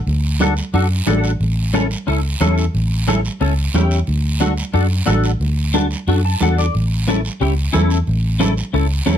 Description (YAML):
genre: latin, cumbia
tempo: 180 BPM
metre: 4/4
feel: straight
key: D major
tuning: A4 = 440 Hz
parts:
  - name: vintage muted fingered electric bass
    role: bass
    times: 0.1-9.2 s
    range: A1 to F#2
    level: -17 LUFS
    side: equal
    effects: none
  - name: congas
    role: percussion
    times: 0.1-9.2 s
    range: none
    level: -23 LUFS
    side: right 4 dB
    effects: none
  - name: guiro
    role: percussion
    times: 0.1-9.2 s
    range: none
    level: -30 LUFS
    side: right 6 dB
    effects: none
  - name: clean electric guitar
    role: accompaniment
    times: 0.4-9.2 s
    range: C#4 to A5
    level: -19 LUFS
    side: left 3 dB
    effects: ensemble chorus
room: light reverb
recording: close, detailed microphones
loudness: -15 LUFS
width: side -9 dB against mid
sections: 0.0-9.2 A section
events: clean electric guitar fill 6.1-6.7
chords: 0.0 D; 1.4 A; 4.1 D; 6.7 A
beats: | 0.07 0.41 0.74 1.07 | 1.41 1.74 2.08 2.41 | 2.74 3.08 3.41 3.74 | 4.08 4.41 4.74 5.08 | 5.41 5.74 6.08 6.41 | 6.74 7.08 7.41 7.74 | 8.07 8.41 8.74 9.07